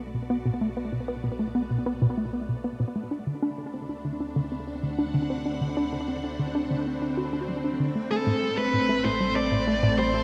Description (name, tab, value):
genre	ambient, sequencer-driven space music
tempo	96 BPM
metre	4/4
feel	straight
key	unclear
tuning	A4 = 440 Hz
part	string machine, full ensemble	sustained chords	0.0-10.2 s	A3 to A5	-34 LUFS	equal	ensemble chorus
part	tight sequenced synth	riff	0.0-10.2 s	A2 to F#4	-30 LUFS	equal	chorus, analog delay
part	analog drone	bass	0.0-10.2 s	A1 to D2	-41 LUFS	equal	chorus
part	pulsing gated texture	texture	0.0-10.2 s	A3 to B5	-44 LUFS	equal	chorus, built-in reverb
part	high-gain lead guitar	melody	8.1-10.2 s	A4 to D5	-28 LUFS	equal	distortion, analog delay
room	wet lush hall reverb, RT60 2.6 s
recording	dreamy mix soaked in reverb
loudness	-28 LUFS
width	mono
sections	0.0-10.2 A section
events	fade-in on string machine 0.0-10.2; fade-in on synth drone 0.0-10.2; fade-in on synth texture 0.0-10.2; filter sweep on synth arpeggio sound 0.0-10.2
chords	0.0 Bm7; 3.1 D7; 8.1 Am